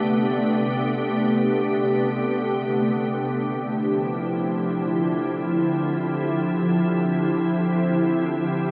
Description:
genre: ambient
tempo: free time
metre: none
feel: none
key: D dorian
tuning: A4 = 440 Hz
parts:
  - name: soft additive organ-like pad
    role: sustained chords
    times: 0.0-8.7 s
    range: C3 to G4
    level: -23 LUFS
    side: equal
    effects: ensemble chorus, built-in reverb
  - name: overtone-sweeping drone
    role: drone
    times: 0.0-3.3 s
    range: D3 to A3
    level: -35 LUFS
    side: equal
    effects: none
room: wet huge ambient reverb, RT60 7.9 s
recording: dark, warm production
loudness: -23 LUFS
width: mono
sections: 0.0-3.2 A section; 3.2-8.7 B section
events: none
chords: 0.0 Am11; 3.2 Dm11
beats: free time

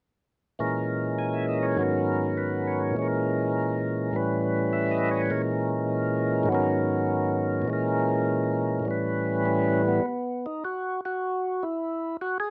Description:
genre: jazz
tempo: 102 BPM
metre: 4/4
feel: swing 68% on 8ths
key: unclear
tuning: A4 = 440 Hz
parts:
  - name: percussive tonewheel organ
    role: solo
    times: 0.6-12.5 s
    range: G#2 to G#5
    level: -26 LUFS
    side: equal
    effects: slow rotary speaker, cassette tape
room: moderate studio reverb, RT60 0.6 s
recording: home recording on cassette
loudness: -27 LUFS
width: mono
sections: 0.6-10.0 A section; 10.0-12.5 B section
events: none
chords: 0.6 A#m7b5; 1.8 G#m11; 2.9 A#m7b5; 4.1 A7; 5.3 A#m7b5; 6.5 G#m11; 7.7 A#m7b5; 8.8 A7; 10.0 N.C.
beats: | 0.58 1.18 1.77 2.36 | 2.95 3.54 4.13 4.72 | 5.31 5.90 6.49 7.08 | 7.67 8.26 8.85 9.44 | 10.03 10.62 11.21 11.79 | 12.38

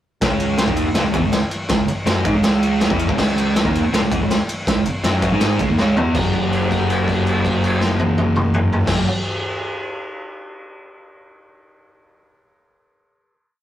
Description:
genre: garage rock duo or trio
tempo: 162 BPM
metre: 4/4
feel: straight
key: unclear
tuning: A4 = 440 Hz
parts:
  - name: fuzz guitar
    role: riff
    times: 0.2-9.1 s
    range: F#2 to G#4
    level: -19 LUFS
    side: right 1 dB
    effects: distortion
  - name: overdriven picked electric bass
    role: bass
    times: 0.2-9.0 s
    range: F#1 to G#2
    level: -25 LUFS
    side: equal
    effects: none
  - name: raw garage drum kit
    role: drums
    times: 0.2-9.0 s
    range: crash cymbal, kick drum, ride cymbal, snare drum, toms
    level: -20 LUFS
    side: equal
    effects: none
room: moderate studio reverb, RT60 0.5 s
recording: rough rehearsal-room recording, tube saturation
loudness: -16 LUFS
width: side -12 dB against mid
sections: 0.2-6.2 pre-chorus; 6.2-9.1 final chord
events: drum fill 5.8-6.2; held note 6.2-8.9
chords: 0.2 C#5; 6.2 F#5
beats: | 0.23 0.59 0.96 1.33 | 1.71 2.08 2.45 2.82 | 3.19 3.56 3.93 4.30 | 4.67 5.04 5.42 5.79 | 6.16 6.52 6.89 7.26 | 7.63 8.00 8.36 8.73

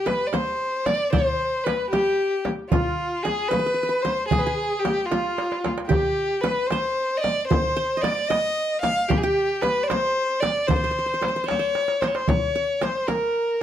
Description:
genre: Arabic maqam ensemble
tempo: 75 BPM (dotted quarters)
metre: 6/8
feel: straight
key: C maqam nahawand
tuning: A4 = 441 Hz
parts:
  - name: rich violin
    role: melody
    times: 0.0-13.6 s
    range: F4 to F5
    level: -23 LUFS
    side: left 1 dB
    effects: plate reverb
  - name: qanun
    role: second line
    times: 0.0-13.6 s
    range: F4 to F5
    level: -29 LUFS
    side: right 4 dB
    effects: none
  - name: darbuka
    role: percussion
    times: 0.1-13.2 s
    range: none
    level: -29 LUFS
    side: right 5 dB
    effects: none
  - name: frame drum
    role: percussion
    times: 0.1-13.2 s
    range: none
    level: -27 LUFS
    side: left 1 dB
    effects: none
room: moderate studio reverb, RT60 0.7 s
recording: dark, warm production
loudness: -21 LUFS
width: side -10 dB against mid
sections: 0.0-12.3 A section; 12.3-13.6 B section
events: drum fill 5.4-5.9, 11.8-12.3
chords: none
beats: 0.33 | 1.13 1.93 | 2.73 3.52 | 4.32 5.12 | 5.91 6.71 | 7.51 8.30 | 9.10 9.89 | 10.69 11.49 | 12.28 13.08

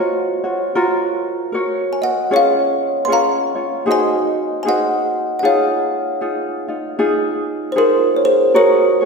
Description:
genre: hawaiian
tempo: 77 BPM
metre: 4/4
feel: swing 59% on 8ths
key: Db major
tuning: A4 = 440 Hz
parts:
  - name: kalimba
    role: melody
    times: 0.0-9.1 s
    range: F4 to C6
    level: -16 LUFS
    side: equal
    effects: none
  - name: ukulele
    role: accompaniment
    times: 0.0-9.1 s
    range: Db4 to Db5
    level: -18 LUFS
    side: equal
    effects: none
room: wet concert hall reverb, RT60 1.8 s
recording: recorded in a church or concert hall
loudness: -15 LUFS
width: side -4 dB against mid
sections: 0.0-8.5 A section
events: none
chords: 0.0 Gbmaj7; 2.3 Db; 3.9 Ab7; 5.4 Dbmaj9; 8.5 F#add9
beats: 0.77 1.54 | 2.32 3.10 3.88 4.66 | 5.43 6.21 6.99 7.76 | 8.54

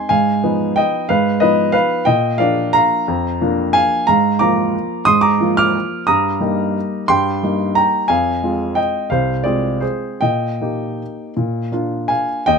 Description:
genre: classical, piano waltz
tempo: 143-192 BPM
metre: 3/4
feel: rubato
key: unclear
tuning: A4 = 439 Hz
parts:
  - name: warm baby grand piano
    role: solo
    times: 0.0-12.6 s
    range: C2 to F6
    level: -14 LUFS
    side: equal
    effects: none
room: little or no reverb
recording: close, detailed microphones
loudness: -15 LUFS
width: side -5 dB against mid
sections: 0.0-12.5 A section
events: none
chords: 0.1 Fm7b5/Ab; 2.1 Bb; 4.1 Bb7/Ab; 6.1 Eb/G; 8.1 Fm; 10.2 Eb/Bb; 11.4 Bb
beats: | 0.10 0.43 0.77 | 1.10 1.41 1.74 | 2.06 2.39 2.75 | 3.08 3.41 3.75 | 4.08 4.41 4.74 | 5.07 5.41 5.75 | 6.08 6.40 6.75 | 7.09 7.43 7.77 | 8.10 8.43 8.78 | 9.12 9.45 9.82 | 10.23 10.61 11.00 | 11.37 11.73 12.10 | 12.47

